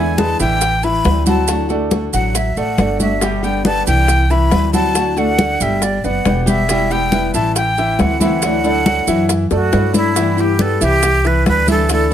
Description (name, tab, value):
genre	latin, Cuban son and guajira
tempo	138 BPM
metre	4/4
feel	straight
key	G major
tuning	A4 = 440 Hz
part	breathy jazz flute	melody	0.0-12.1 s	E4 to B5	-18 LUFS	equal	none
part	flamenco guitar	accompaniment	0.0-12.1 s	B2 to G4	-21 LUFS	left 2 dB	none
part	clear baby grand piano	arpeggios	0.0-12.1 s	E3 to G5	-20 LUFS	equal	none
part	upright bass	bass	0.0-12.1 s	E1 to G2	-19 LUFS	right 1 dB	none
part	bongos	percussion	0.2-12.1 s	none	-25 LUFS	left 5 dB	none
part	congas	percussion	0.2-12.1 s	none	-20 LUFS	left 1 dB	none
part	maracas	percussion	0.2-12.1 s	none	-24 LUFS	right 8 dB	none
room	light reverb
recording	close, detailed microphones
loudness	-13 LUFS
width	side -10 dB against mid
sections	0.0-10.2 A section; 10.2-12.1 A section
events	drum fill 9.5-10.2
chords	0.0 E7; 0.6 Am7; 1.5 D; 3.2 G; 4.1 C; 5.0 D; 5.8 G; 6.7 Em; 7.6 Am; 8.4 Dadd9; 10.2 G6; 11.0 Cadd9